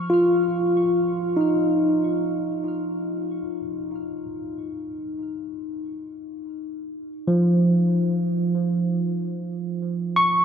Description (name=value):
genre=ambient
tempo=free time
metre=none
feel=none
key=unclear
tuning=A4 = 440 Hz
part: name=barky tine electric piano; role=solo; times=0.0-10.4 s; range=E#3 to E#6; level=-21 LUFS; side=equal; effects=ping-pong delay
room=wet huge ambient reverb, RT60 7.6 s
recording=in a vast, echoing space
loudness=-21 LUFS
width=side -7 dB against mid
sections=0.0-3.4 A section; 3.4-10.4 B section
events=none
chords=0.0 C#add9/E#; 3.4 C#add9 (rootless)